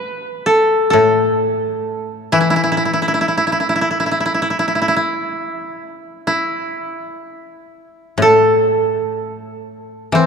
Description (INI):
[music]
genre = japanese traditional, Japanese chamber music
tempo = 59-66 BPM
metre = 4/4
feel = rubato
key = unclear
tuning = A4 = 441 Hz
[part]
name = koto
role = melody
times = 0.0-10.3 s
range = E4 to B4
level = -15 LUFS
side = equal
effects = none
[part]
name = koto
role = accompaniment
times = 0.9-10.3 s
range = A2 to E3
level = -20 LUFS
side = left 4 dB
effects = none
[sound]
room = moderate church reverb, RT60 3.3 s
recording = dark, warm production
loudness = -14 LUFS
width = side -6 dB against mid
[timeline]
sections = 0.0-6.3 A section; 6.3-10.3 B section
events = none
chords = none